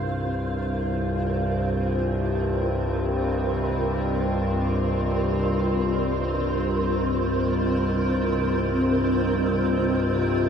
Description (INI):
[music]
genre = ambient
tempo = free time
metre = none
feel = none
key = C minor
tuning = A4 = 440 Hz
[part]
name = granular cloud pad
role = sustained chords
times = 0.0-10.5 s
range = C4 to F5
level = -26 LUFS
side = equal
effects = built-in reverb
[part]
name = analog drone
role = drone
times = 0.0-10.5 s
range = C2 to G2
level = -25 LUFS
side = equal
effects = chorus
[part]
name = wind-like tuned noise texture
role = texture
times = 0.0-10.5 s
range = C5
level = -32 LUFS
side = right 3 dB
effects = built-in reverb
[sound]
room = wet huge ambient reverb, RT60 8.3 s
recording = none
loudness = -22 LUFS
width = side -7 dB against mid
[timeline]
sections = 0.0-10.5 A section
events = fade-in on ambient pad 0.0-10.5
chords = 0.0 Cm7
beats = free time